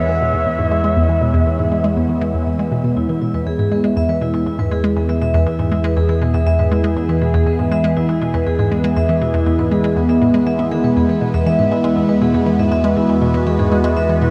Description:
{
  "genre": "ambient, sequencer-driven space music",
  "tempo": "120 BPM",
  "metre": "4/4",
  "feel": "straight",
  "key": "E major",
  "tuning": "A4 = 435 Hz",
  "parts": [
    { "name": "expressive synth lead", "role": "melody", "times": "0.0-2.4 s", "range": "E5", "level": "-25 LUFS", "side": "equal", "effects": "chorus, shimmer reverb, tape echo" },
    { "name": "phased analog pad", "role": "sustained chords", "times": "0.0-14.3 s", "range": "E3 to C#5", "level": "-22 LUFS", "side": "equal", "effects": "phaser, chorus, shimmer reverb" },
    { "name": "hollow square pluck", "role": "riff", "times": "0.0-14.3 s", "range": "E2 to B3", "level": "-22 LUFS", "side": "equal", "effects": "chorus, shimmer reverb, tape echo" },
    { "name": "analog drone", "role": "bass", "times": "0.0-14.3 s", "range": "E2", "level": "-23 LUFS", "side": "equal", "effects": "chorus" },
    { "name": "vibraphone with medium hard mallets", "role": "arpeggios", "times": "3.0-14.3 s", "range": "B3 to E5", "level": "-23 LUFS", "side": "equal", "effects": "shimmer reverb, tape echo" }
  ],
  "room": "wet huge ambient reverb, RT60 7.6 s",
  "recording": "none",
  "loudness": "-16 LUFS",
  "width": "mono",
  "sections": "0.0-3.0 A section; 3.0-14.3 B section",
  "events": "filter sweep on synth arpeggio sound 0.0-3.0",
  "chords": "0.0 E",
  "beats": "0.47 | 0.97 1.47 1.97 2.47 | 2.97 3.47 3.97 4.47 | 4.97 5.47 5.97 6.47 | 6.97 7.47 7.97 8.47 | 8.97 9.47 9.97 10.47 | 10.97 11.47 11.97 12.47 | 12.97 13.47 13.97"
}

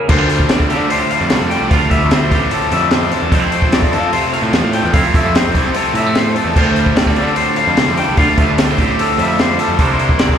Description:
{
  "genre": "math rock and midwest emo",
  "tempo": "148 BPM",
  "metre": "4/4",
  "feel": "straight",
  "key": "D minor",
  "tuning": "A4 = 440 Hz",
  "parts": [
    { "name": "twangy electric guitar", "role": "accompaniment", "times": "0.0-10.4 s", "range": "D2 to G4", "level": "-20 LUFS", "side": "right 7 dB", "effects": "harmonic tremolo, slapback echo" },
    { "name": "electric guitar through a small old amp", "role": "arpeggios", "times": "0.0-10.4 s", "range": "A4 to G5", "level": "-18 LUFS", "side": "left 6 dB", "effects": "spring reverb, slapback echo" },
    { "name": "biting overdriven guitar", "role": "riff", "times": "0.1-10.4 s", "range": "F2 to E4", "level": "-19 LUFS", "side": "left 1 dB", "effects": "slapback echo" },
    { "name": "fuzz picked electric bass", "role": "bass", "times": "0.1-10.4 s", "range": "A1 to F3", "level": "-19 LUFS", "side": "equal", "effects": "overdrive" },
    { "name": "compact cocktail drum kit", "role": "drums", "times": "0.1-10.4 s", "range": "crash cymbal, hi-hat, kick drum, snare drum", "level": "-16 LUFS", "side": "equal", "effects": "none" }
  ],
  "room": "small room ambience",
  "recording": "live gig heard through the venue's PA, recital hall reverb",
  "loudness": "-12 LUFS",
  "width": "side -8 dB against mid",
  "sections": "0.1-10.4 A section",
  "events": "none",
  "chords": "0.1 Dm11; 3.3 Fmaj7; 6.6 Dm11; 9.8 C9",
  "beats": "| 0.09 0.50 0.90 1.30 | 1.71 2.11 2.52 2.92 | 3.33 3.73 4.13 4.54 | 4.94 5.34 5.75 6.15 | 6.56 6.96 7.37 7.77 | 8.18 8.58 8.98 9.39 | 9.79 10.20"
}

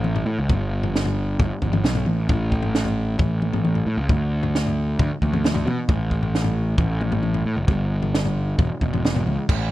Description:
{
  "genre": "math rock and midwest emo",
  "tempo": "133 BPM",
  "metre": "4/4",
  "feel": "straight",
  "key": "A mixolydian",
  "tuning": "A4 = 440 Hz",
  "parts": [
    { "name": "fuzz picked electric bass", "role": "bass", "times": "0.0-9.7 s", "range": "E1 to B2", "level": "-22 LUFS", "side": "equal", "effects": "overdrive" },
    { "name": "compact cocktail drum kit", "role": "drums", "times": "0.0-9.6 s", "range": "crash cymbal, kick drum, snare drum, toms", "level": "-23 LUFS", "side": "equal", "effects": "none" }
  ],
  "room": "little or no reverb",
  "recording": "rough home demo mix",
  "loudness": "-19 LUFS",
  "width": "side -15 dB against mid",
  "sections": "0.0-9.5 A section",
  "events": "none",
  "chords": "none",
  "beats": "0.04 | 0.49 0.94 1.39 1.84 | 2.29 2.74 3.19 3.64 | 4.09 4.54 4.99 5.44 | 5.89 6.34 6.79 7.24 | 7.68 8.13 8.59 9.04 | 9.49"
}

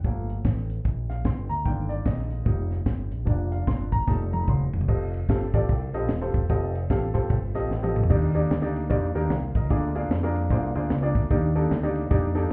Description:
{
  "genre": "uptempo gospel",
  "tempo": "149 BPM",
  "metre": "4/4",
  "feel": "swing 62% on 8ths",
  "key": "unclear",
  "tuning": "A4 = 440 Hz",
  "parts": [
    { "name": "clear baby grand piano", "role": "accompaniment", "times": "0.0-12.5 s", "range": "D3 to C6", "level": "-31 LUFS", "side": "equal", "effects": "none" },
    { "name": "fingered electric bass with an envelope filter", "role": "bass", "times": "0.0-12.5 s", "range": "Eb1 to F2", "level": "-29 LUFS", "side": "equal", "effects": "none" },
    { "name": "tight funk drum kit", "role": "drums", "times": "0.0-12.4 s", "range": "crash cymbal, hi-hat, kick drum, ride cymbal, snare drum, toms", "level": "-27 LUFS", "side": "equal", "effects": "none" }
  ],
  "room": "little or no reverb",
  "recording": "heard muffled through a wall, club reverb, EQ",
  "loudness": "-25 LUFS",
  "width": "mono",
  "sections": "0.0-4.9 A section; 4.9-8.1 B section; 8.1-12.5 C section",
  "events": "grand piano solo 0.0-4.9; drum fill 4.1-4.9, 7.7-8.1",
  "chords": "0.0 Gm9; 1.7 Ebmaj7/G; 2.5 F9sus4; 3.3 Bb/F; 4.1 F9; 8.1 Ebmaj7; 9.7 Bb7/D; 11.3 Ebmaj7",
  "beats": "| 0.04 0.45 0.85 1.25 | 1.66 2.06 2.46 2.87 | 3.27 3.67 4.08 4.48 | 4.88 5.29 5.69 6.09 | 6.49 6.90 7.30 7.70 | 8.10 8.50 8.90 9.31 | 9.71 10.11 10.51 10.91 | 11.31 11.71 12.11 12.52"
}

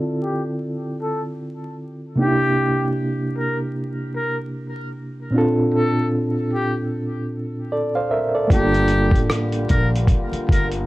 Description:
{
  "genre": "lo-fi hip hop",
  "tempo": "76 BPM",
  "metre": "4/4",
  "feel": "swing 59% on 16ths",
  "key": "G dorian",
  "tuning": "A4 = 440 Hz",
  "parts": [
    { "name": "bright reed electric piano", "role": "accompaniment", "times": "0.0-10.9 s", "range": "Bb2 to F5", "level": "-22 LUFS", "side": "right 1 dB", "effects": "fast tremolo, low-pass filter" },
    { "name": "trumpet with metal mute", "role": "melody", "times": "0.2-10.7 s", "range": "G4 to Bb4", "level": "-26 LUFS", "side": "left 2 dB", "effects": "low-pass filter, tape echo" },
    { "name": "mellow French horn section", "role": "sustained chords", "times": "8.5-10.9 s", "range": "D3 to F4", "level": "-30 LUFS", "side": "left 2 dB", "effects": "low-pass filter" },
    { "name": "upright bass", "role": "bass", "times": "8.5-10.9 s", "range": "G1 to Bb1", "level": "-21 LUFS", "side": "equal", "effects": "none" },
    { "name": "dusty soul sampler-style drum kit", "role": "drums", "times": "8.5-10.9 s", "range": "hi-hat, kick drum, rim click", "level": "-19 LUFS", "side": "equal", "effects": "none" }
  ],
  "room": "moderate studio reverb, RT60 0.6 s",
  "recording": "dark, warm production, vinyl crackle",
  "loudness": "-18 LUFS",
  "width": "side -18 dB against mid",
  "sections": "0.0-8.5 A section; 8.5-10.9 B section",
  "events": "filter sweep 0.0-8.5",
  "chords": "0.0 Dm7; 2.2 C7; 5.3 Bbmaj9; 8.5 Gm7",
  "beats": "0.60 1.39 | 2.18 2.97 3.76 4.55 | 5.34 6.13 6.92 7.71 | 8.50 9.29 10.08"
}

